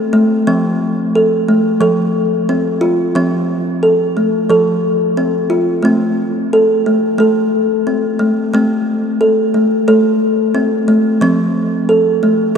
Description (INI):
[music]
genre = world meditative, meditative tuned percussion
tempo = 89 BPM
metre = 4/4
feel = swing 55% on 16ths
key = unclear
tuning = A4 = 440 Hz
[part]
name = kalimba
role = solo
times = 0.0-12.6 s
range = F3 to A4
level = -12 LUFS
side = equal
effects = none
[sound]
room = wet cathedral reverb, RT60 6.5 s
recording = dark, warm production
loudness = -12 LUFS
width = side -7 dB against mid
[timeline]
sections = 0.0-12.6 A section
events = none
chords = 0.5 F; 5.8 Am; 11.2 F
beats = | 0.47 1.14 1.81 2.48 | 3.15 3.83 4.50 5.17 | 5.84 6.51 7.19 7.86 | 8.53 9.20 9.87 10.55 | 11.22 11.89 12.56